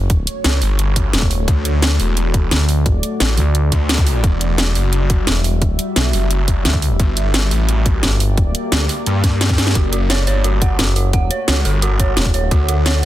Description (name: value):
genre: dark technical drum and bass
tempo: 174 BPM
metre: 4/4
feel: straight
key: F# phrygian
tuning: A4 = 438 Hz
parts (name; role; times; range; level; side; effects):
- deep dark ambient pad; sustained chords; 0.0-13.1 s; G3 to F#5; -25 LUFS; equal; chorus, built-in reverb, sidechain pumping
- growling FM bass; bass; 0.0-8.5, 10.8-12.5 s; E1 to D2; -17 LUFS; equal; none
- impact and zap; sound effects; 0.0-0.1, 4.0-4.1 s; none; -36 LUFS; left 1 dB; none
- drum and bass drum kit; drums; 0.1-12.9 s; hi-hat, snare drum; -19 LUFS; equal; overdrive
- electronic kick drum; drums; 0.1-12.6 s; none; -16 LUFS; equal; overdrive
- snarling distorted saw bass; bass; 0.4-13.0 s; E1 to G2; -17 LUFS; equal; distortion, overdrive, sidechain pumping
- dark detuned synth bell; arpeggios; 9.8-13.0 s; F#4 to F#5; -24 LUFS; right 4 dB; chorus, sidechain pumping, tape echo
room: little or no reverb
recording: dense, heavily limited modern master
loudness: -14 LUFS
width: side -14 dB against mid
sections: 0.0-13.1 A section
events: drum fill 9.5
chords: 0.0 F#m; 1.5 D; 4.2 Emadd9; 7.0 Gm; 9.8 F#m; 12.5 D